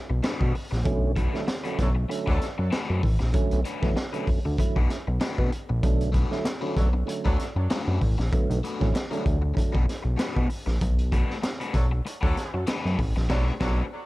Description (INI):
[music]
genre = funk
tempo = 96 BPM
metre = 4/4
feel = swing 56% on 16ths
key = B minor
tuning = A4 = 440 Hz
[part]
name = crunchy overdriven guitar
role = accompaniment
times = 0.1-13.8 s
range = A3 to B4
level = -35 LUFS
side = left 4 dB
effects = phaser
[part]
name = fat analog bass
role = bass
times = 0.1-13.8 s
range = A1 to B2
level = -25 LUFS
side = equal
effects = none
[part]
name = crunchy breakbeat drum kit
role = drums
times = 0.2-13.8 s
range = crash cymbal, hi-hat, kick drum, snare drum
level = -26 LUFS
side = equal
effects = none
[part]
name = tonewheel organ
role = stabs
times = 0.8-10.0 s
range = D3 to E4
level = -32 LUFS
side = right 4 dB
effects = overdrive, chorus vibrato, slow rotary speaker, tape echo
[part]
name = warm horn section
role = second line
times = 1.8-2.5, 6.8-7.5, 11.7-13.8 s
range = F#3 to A4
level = -36 LUFS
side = right 1 dB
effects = tube saturation, tape echo
[part]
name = group handclap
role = percussion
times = 6.5-12.8 s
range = none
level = -45 LUFS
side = left 4 dB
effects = none
[sound]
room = small room ambience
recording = dark, warm production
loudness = -23 LUFS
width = side -19 dB against mid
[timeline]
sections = 0.0-14.1 A section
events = band accent 13.3-14.1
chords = 0.0 Bm7